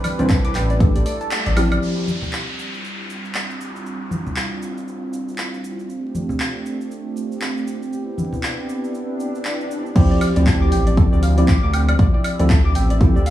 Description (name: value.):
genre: deep house.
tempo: 118 BPM.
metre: 4/4.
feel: swing 59% on 16ths.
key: D dorian.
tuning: A4 = 441 Hz.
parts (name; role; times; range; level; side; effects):
warm analog pad; sustained chords; 0.0-13.3 s; F3 to E5; -27 LUFS; right 1 dB; chorus, tremolo, sidechain pumping.
soft round pluck; arpeggios; 0.0-1.8, 10.0-13.3 s; A4 to D6; -28 LUFS; left 1 dB; chorus, sidechain pumping, dub echo.
deep house drum kit; drums; 0.0-13.3 s; cabasa, crash cymbal, handclaps, hi-hat, woodblock; -28 LUFS; equal; studio ambience.
congas; percussion; 0.0-8.4 s; none; -27 LUFS; left 1 dB; none.
tine electric piano; stabs; 0.2-2.1, 10.0-13.1 s; E3 to C5; -22 LUFS; equal; lush chorus, sidechain pumping, dub echo.
smooth synth bass; bass; 0.2-1.8, 10.0-13.3 s; A1 to D2; -18 LUFS; equal; sidechain pumping.
electronic kick drum; drums; 0.3-0.9, 10.0-13.1 s; none; -15 LUFS; equal; studio ambience.
downlifter, swell and sub drop; sound effects; 1.8-12.0 s; none; -29 LUFS; equal; none.
room: light reverb.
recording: vinyl crackle, small room ambience.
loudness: -17 LUFS.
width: side -13 dB against mid.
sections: 0.0-1.8 A section; 1.8-10.0 B section; 10.0-13.3 C section.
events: kick drops out 1.3-1.8; band accent 1.3; filter sweep on analog synth pad 1.8-10.0; swell 9.2-10.0; drop 10.0-13.3; impact 10.0-12.0.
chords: 0.0 Cmaj9; 0.8 A7sus4; 1.8 Dm11; 5.9 G9sus4; 7.9 Cmaj9; 10.0 Dm11.